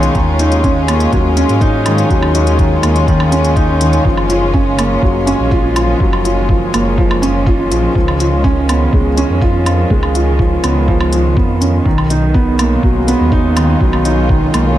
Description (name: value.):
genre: piano and strings electronica.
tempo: 123 BPM.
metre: 4/4.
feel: straight.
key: F# major.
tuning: A4 = 440 Hz.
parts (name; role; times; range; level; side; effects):
warm chamber string section; sustained chords; 0.0-14.8 s; D#3 to E#4; -18 LUFS; left 1 dB; sidechain pumping.
felt-muted upright piano; riff; 0.0-14.8 s; D#3 to E#4; -15 LUFS; right 1 dB; tape echo.
dark detuned saw bass; bass; 0.0-14.8 s; F#1 to G#2; -16 LUFS; equal; sidechain pumping.
electronic hi-hat and woodblock; drums; 0.0-14.6 s; none; -23 LUFS; right 1 dB; none.
electronic kick drum; drums; 0.2-14.4 s; none; -15 LUFS; equal; none.
room: light reverb.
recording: none.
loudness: -10 LUFS.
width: side -13 dB against mid.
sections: 0.0-4.1 A section; 4.1-14.8 A section.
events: drop 0.0-4.1, 4.1-14.8.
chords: 0.1 D#m7; 4.1 F#maj7; 8.0 C#7; 11.9 Bmaj7.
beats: | 0.15 0.64 1.12 1.61 | 2.10 2.59 3.08 3.56 | 4.05 4.54 5.03 5.51 | 6.00 6.49 6.98 7.47 | 7.95 8.44 8.93 9.42 | 9.90 10.39 10.88 11.37 | 11.86 12.34 12.83 13.32 | 13.81 14.29 14.78.